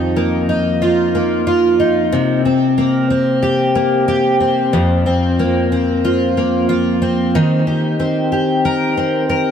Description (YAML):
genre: dream pop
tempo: 92 BPM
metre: 4/4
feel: straight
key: unclear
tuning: A4 = 441 Hz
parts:
  - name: fingerpicked twelve-string acoustic guitar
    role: solo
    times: 0.0-9.5 s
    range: F2 to Bb4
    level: -13 LUFS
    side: equal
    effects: lush chorus, analog delay
room: moderate plate reverb, RT60 3.6 s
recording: echo-heavy mix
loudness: -13 LUFS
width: side -8 dB against mid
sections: 0.0-9.5 A section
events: none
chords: 0.0 F7sus4; 2.1 C5; 4.7 Fsus4; 7.3 Eb6